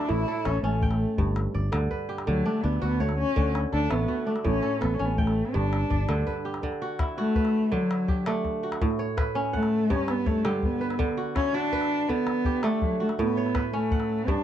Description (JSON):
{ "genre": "west african traditional, West African string and xylophone music", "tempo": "110 BPM (dotted quarters)", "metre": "12/8", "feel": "straight", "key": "D major", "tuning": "A4 = 440 Hz", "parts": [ { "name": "dark cello", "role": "melody", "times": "0.0-14.4 s", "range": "F#3 to E4", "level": "-27 LUFS", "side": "left 1 dB", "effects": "none" }, { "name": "kora", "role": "arpeggios", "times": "0.0-14.4 s", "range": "G2 to G5", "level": "-29 LUFS", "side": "right 3 dB", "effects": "none" }, { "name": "calabash", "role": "percussion", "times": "0.0-14.4 s", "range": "none", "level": "-30 LUFS", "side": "left 2 dB", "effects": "none" }, { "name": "fingered electric bass", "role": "bass", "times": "0.1-6.2 s", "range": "G1 to D2", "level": "-27 LUFS", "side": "equal", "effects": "none" } ], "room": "light reverb", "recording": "dark, warm production", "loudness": "-24 LUFS", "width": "side -10 dB against mid", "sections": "0.0-6.6 A section; 6.6-14.4 B section", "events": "cello solo 6.6-14.4", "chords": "0.1 A; 1.2 G; 2.3 D; 4.5 A; 5.5 G; 6.6 D; 8.8 A; 9.9 G; 11.0 D; 13.2 A" }